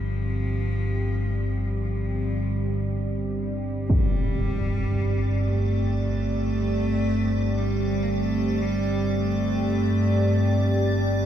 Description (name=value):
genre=dark ambient drone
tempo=free time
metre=none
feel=none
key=unclear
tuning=A4 = 442 Hz
part: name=clear cello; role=melody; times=0.0-11.3 s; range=F3 to Bb3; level=-30 LUFS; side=equal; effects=tape echo
part: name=dark analog pad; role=sustained chords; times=0.0-11.3 s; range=G3 to G4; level=-29 LUFS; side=right 2 dB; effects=chorus, phaser
part: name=analog drone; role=drone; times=0.0-11.3 s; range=G1 to G2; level=-25 LUFS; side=equal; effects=lush chorus
part: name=impact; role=percussion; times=3.9-4.1 s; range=none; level=-26 LUFS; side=equal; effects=low-pass filter on sfx
part: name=icy glass pad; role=texture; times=4.6-11.3 s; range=D5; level=-33 LUFS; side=left 1 dB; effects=chorus, built-in reverb
room=wet cathedral reverb, RT60 6.8 s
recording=dark, warm production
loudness=-22 LUFS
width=side -10 dB against mid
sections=0.0-11.3 A section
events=fade-in on cello 0.0-11.3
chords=0.0 Gsus2